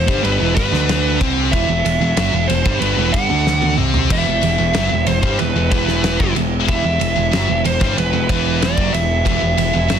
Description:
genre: quiet-loud alternative rock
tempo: 93 BPM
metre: 4/4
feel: straight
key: E minor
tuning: A4 = 444 Hz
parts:
  - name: fuzz lead guitar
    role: melody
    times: 0.0-10.0 s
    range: B4 to F#5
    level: -21 LUFS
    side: right 2 dB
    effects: distortion, slapback echo
  - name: heavy high-gain guitar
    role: riff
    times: 0.0-10.0 s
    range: E2 to D4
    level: -22 LUFS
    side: left 14 dB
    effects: distortion
  - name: sludgy distorted guitar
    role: riff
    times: 0.0-10.0 s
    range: E2 to D4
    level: -22 LUFS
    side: right 11 dB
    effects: overdrive
  - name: growling picked electric bass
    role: bass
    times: 0.0-10.0 s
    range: E1 to D2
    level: -20 LUFS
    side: left 1 dB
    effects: overdrive
  - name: loose indie drum kit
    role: drums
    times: 0.1-10.0 s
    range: crash cymbal, kick drum, ride cymbal, snare drum, toms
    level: -20 LUFS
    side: equal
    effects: none
  - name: tonewheel organ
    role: sustained chords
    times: 4.1-10.0 s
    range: E3 to G4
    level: -30 LUFS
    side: right 1 dB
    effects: overdrive, stopped rotary speaker
room: small room ambience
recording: dense, heavily limited modern master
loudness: -14 LUFS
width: side -8 dB against mid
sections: 0.0-10.0 A section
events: drum fill 3.5-4.1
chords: 0.0 Em

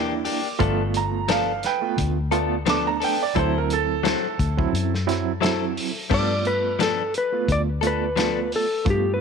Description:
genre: straight-eighth soul blues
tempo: 87 BPM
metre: 4/4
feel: swing 55% on 16ths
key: G mixolydian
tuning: A4 = 441 Hz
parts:
  - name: clear upright piano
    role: second line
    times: 0.0-5.7 s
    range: A4 to D6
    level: -27 LUFS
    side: right 11 dB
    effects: none
  - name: overdriven reed electric piano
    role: accompaniment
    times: 0.0-9.2 s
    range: F#3 to F4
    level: -27 LUFS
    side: right 13 dB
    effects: fast tremolo
  - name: direct-recorded clean electric guitar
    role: stabs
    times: 0.0-8.4 s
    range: E3 to A4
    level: -27 LUFS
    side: left 14 dB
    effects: spring reverb
  - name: vintage muted fingered electric bass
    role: bass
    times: 0.0-9.2 s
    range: G1 to G2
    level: -26 LUFS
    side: left 2 dB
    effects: none
  - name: warm soul drum kit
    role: drums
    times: 0.3-9.0 s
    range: crash cymbal, hi-hat, kick drum, snare drum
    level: -28 LUFS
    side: left 2 dB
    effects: none
  - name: clean lap steel guitar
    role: melody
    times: 6.1-9.2 s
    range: G4 to D5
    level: -24 LUFS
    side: left 2 dB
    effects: none
room: light reverb, studio reverb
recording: 1960s-style stereo with parts hard left and right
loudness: -20 LUFS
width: side -6 dB against mid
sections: 0.0-6.1 A section; 6.1-9.2 B section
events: upright piano solo 0.0-6.1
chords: 0.0 C9 (rootless); 0.6 G9; 3.4 D9; 6.1 G9

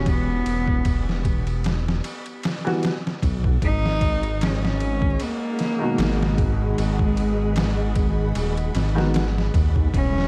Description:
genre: trip hop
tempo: 76 BPM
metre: 4/4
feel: swing 55% on 16ths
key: G# minor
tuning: A4 = 440 Hz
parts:
  - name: rich cello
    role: melody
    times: 0.0-10.3 s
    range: G#3 to D#4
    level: -29 LUFS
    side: equal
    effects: tape echo
  - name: warm upright piano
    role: accompaniment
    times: 0.0-9.2 s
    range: B2 to F#4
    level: -32 LUFS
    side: equal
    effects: harmonic tremolo, tape echo
  - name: dark detuned saw bass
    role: bass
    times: 0.0-10.3 s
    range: D#1 to D#2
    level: -26 LUFS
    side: equal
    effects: none
  - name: trip hop sampler-style drum kit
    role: drums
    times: 0.1-10.3 s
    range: kick drum, ride cymbal, snare drum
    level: -27 LUFS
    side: equal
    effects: overdrive, studio reverb
  - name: string machine, cellos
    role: sustained chords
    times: 3.6-10.3 s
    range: G3 to B5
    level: -35 LUFS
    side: equal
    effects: ensemble chorus
room: little or no reverb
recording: dark, warm production, vinyl crackle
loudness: -22 LUFS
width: mono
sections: 0.0-10.3 A section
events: none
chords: 0.0 Emadd9; 3.6 G#m7

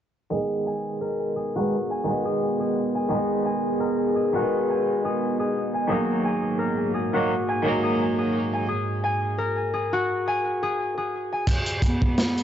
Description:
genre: trip hop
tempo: 86 BPM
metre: 4/4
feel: swing 56% on 16ths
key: G# minor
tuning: A4 = 435 Hz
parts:
  - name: harpsichord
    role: accompaniment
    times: 0.3-8.7 s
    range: D#3 to D#4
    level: -26 LUFS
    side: right 1 dB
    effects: tremolo, low-pass filter, tape echo
  - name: deep dark ambient pad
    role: sustained chords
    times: 1.3-8.7 s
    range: G#2 to D#5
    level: -28 LUFS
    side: right 1 dB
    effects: chorus, built-in reverb
  - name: concert harp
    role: arpeggios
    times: 0.3-12.4 s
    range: F#4 to G#5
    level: -27 LUFS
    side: left 2 dB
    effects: low-pass filter, tape echo
  - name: crunchy breakbeat drum kit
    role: drums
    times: 11.5-12.4 s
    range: crash cymbal, hi-hat, kick drum, snare drum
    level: -21 LUFS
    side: equal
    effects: none
  - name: dark cello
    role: melody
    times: 11.8-12.4 s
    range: B3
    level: -25 LUFS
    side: equal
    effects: none
room: light reverb, small room ambience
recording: dry, gritty hardware recording, cassette tape, low-pass filter, nothing above 7.8 kHz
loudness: -22 LUFS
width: side -10 dB against mid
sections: 0.3-11.5 A section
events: filter sweep on harpsichord 0.3-11.5; filter sweep on harp 0.3-11.5; filter sweep 0.3-11.5; break 8.7-11.5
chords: 0.3 G#m; 5.9 D#m/G#; 11.5 G#m

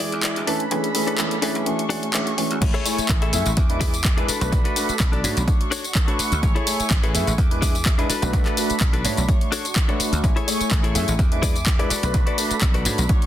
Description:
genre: filtered disco house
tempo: 126 BPM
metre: 4/4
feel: swing 53% on 16ths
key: A major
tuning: A4 = 439 Hz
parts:
  - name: warm grand piano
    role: accompaniment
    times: 0.0-13.3 s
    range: E3 to G#5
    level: -26 LUFS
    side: right 1 dB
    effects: phaser, vintage 12-bit sampler grit, sidechain pumping, low-pass filter
  - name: muted studio violin section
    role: sustained chords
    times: 0.0-13.3 s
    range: A3 to D6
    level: -30 LUFS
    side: right 1 dB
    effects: sidechain pumping, low-pass filter
  - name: direct-recorded clean electric guitar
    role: riff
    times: 0.0-13.0 s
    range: D4 to E5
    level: -29 LUFS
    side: left 5 dB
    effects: sidechain pumping, low-pass filter
  - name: house drum kit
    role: drums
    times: 0.0-13.3 s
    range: crash cymbal, handclaps, hi-hat, tambourine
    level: -25 LUFS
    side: left 2 dB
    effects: sidechain pumping on hats, studio reverb, sidechain pumping on cymbals, sidechain pumping on perc
  - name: dry thumbed slap bass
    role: bass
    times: 0.1-13.1 s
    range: A1 to G#2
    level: -26 LUFS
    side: equal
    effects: sidechain pumping, high-pass filter, low-pass filter
  - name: electronic kick drum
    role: drums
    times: 2.6-13.2 s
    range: none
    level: -20 LUFS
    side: equal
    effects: overdrive, studio reverb
room: light reverb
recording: dense, heavily limited modern master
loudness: -18 LUFS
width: side -11 dB against mid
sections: 0.0-2.6 A section; 2.6-13.3 B section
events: build-up 0.0-2.6; drop 2.6-13.3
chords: 0.5 Bm7; 1.7 Dmaj7; 2.6 Amaj7; 3.6 E7; 4.3 Bm7; 5.5 Dmaj7; 6.4 Amaj7; 7.4 E7; 8.1 Bm7; 9.3 Dmaj7; 10.2 Amaj7; 11.2 E7; 11.9 Bm7

